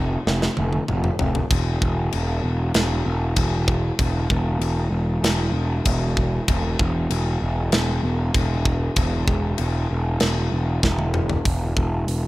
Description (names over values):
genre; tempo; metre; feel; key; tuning
heavy metal; 97 BPM; 4/4; straight; unclear; A4 = 440 Hz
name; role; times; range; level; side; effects
fuzz picked electric bass; bass; 0.0-12.3 s; E1 to F1; -21 LUFS; equal; overdrive
tight metal drum kit; drums; 0.3-12.2 s; crash cymbal, hi-hat, kick drum, snare drum, toms; -24 LUFS; equal; none
room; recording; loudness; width
little or no reverb; rough home demo mix; -19 LUFS; side -18 dB against mid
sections
0.0-1.5 A section; 1.5-11.5 B section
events
half time 0.0-1.5; drum fill 0.3-1.5, 10.8-11.5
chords
none